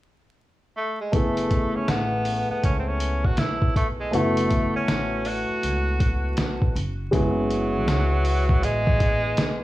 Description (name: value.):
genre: hip hop, jazz-hop.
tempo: 80 BPM.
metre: 4/4.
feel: swing 63% on 16ths.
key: F# minor.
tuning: A4 = 440 Hz.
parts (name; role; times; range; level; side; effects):
clear tenor saxophone; melody; 0.8-9.6 s; F#3 to F#4; -27 LUFS; right 1 dB; tape echo.
dark baby grand piano; accompaniment; 1.1-9.6 s; G#3 to G#4; -27 LUFS; equal; none.
upright bass; bass; 1.1-9.6 s; F#1 to C#2; -27 LUFS; equal; tube saturation.
lo-fi sampler-style drum kit; drums; 1.1-9.6 s; hi-hat, kick drum, snare drum; -24 LUFS; equal; none.
room: little or no reverb.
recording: dry, gritty hardware recording, vinyl crackle, studio reverb.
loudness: -21 LUFS.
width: side -16 dB against mid.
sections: 0.0-1.1 A section; 1.1-7.1 B section; 7.1-9.6 C section.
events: none.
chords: 0.0 N.C.; 1.1 F#m11; 6.8 N.C.; 7.1 F#m11.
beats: 0.38 | 1.13 1.88 2.63 3.38 | 4.13 4.88 5.63 6.38 | 7.13 7.88 8.63 9.38.